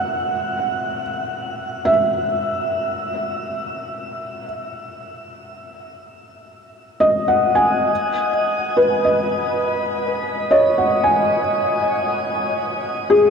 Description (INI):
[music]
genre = ambient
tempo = free time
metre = none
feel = none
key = unclear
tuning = A4 = 440 Hz
[part]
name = felt-muted upright piano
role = solo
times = 0.0-13.3 s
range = G#4 to G#5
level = -17 LUFS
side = equal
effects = diffuse ambient delay
[sound]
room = wet shimmer reverb, RT60 8.5 s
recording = none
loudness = -17 LUFS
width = side -6 dB against mid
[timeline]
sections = 0.0-13.3 A section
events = none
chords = 0.0 N.C.; 7.9 G#m7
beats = free time